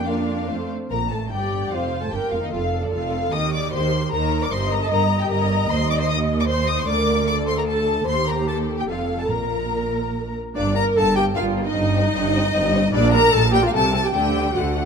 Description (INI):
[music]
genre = quick classical-period movement for string orchestra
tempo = 150 BPM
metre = 3/4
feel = rubato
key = Bb major, G minor from 10.6 s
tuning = A4 = 439 Hz
[part]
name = warm studio violin section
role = melody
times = 0.0-14.8 s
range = G3 to Eb6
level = -27 LUFS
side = left 6 dB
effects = none
[part]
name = rich studio violin section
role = second line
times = 0.0-14.9 s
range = D4 to Bb5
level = -25 LUFS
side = left 4 dB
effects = none
[part]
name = rich studio viola section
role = accompaniment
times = 0.0-14.9 s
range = A3 to Eb5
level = -24 LUFS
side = right 2 dB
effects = none
[part]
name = clear studio cello section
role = bass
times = 0.0-14.9 s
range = D2 to D4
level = -25 LUFS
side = right 2 dB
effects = none
[part]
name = rich studio double bass section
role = bass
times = 0.0-14.9 s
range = F1 to F2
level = -26 LUFS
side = right 3 dB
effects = none
[sound]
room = moderate concert hall reverb, RT60 1.8 s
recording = none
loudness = -18 LUFS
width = side -6 dB against mid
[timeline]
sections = 0.9-10.6 A section; 10.6-14.9 B section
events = none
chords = 0.5 F; 0.9 Bb; 3.3 Eb; 4.5 Eb/G; 5.7 Cmadd9/Eb; 6.9 Bb/D; 8.1 Eb6; 8.9 F; 9.3 N.C.; 10.6 Gm; 11.8 Cm/G; 12.9 Gm/Bb; 13.7 Am7/C; 14.1 D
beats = 0.07 0.49 | 0.91 1.32 1.73 | 2.13 2.53 2.93 | 3.33 3.73 4.13 | 4.52 4.92 5.31 | 5.71 6.10 6.50 | 6.89 7.29 7.68 | 8.08 8.48 8.89 | 9.31 9.73 10.14 | 10.56 10.97 11.37 | 11.76 12.15 12.55 | 12.94 13.34 13.74 | 14.15 14.56